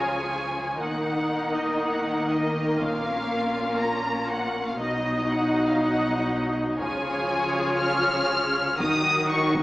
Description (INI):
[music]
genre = cinematic, hybrid orchestral and electronic film score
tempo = free time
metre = none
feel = none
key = unclear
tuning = A4 = 441 Hz
[part]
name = rich symphonic violin section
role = melody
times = 0.0-9.6 s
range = Eb5 to F6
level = -28 LUFS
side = left 1 dB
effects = none
[part]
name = warm symphonic violin section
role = second line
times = 0.0-9.6 s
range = Eb4 to D#5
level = -29 LUFS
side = left 1 dB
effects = none
[part]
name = warm symphonic viola section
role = accompaniment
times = 0.0-9.6 s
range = F3 to F4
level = -28 LUFS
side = equal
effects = none
[part]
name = dark symphonic cello section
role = bass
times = 0.0-9.6 s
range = Bb2 to Eb3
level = -29 LUFS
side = equal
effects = none
[part]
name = sub bass with octave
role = bass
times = 0.0-9.6 s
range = Eb1 to Db2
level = -46 LUFS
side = equal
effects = none
[part]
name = taiko ensemble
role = drums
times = 2.8-3.8, 6.8-9.6 s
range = none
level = -36 LUFS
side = equal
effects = none
[sound]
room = wet scoring stage reverb, RT60 1.7 s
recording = recorded in a church or concert hall, small speaker sound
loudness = -22 LUFS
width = side -17 dB against mid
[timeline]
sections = 0.0-9.6 A section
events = none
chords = 0.0 Db; 0.8 Ebm; 2.8 Bbm; 4.8 B; 6.8 Db; 8.8 Ebm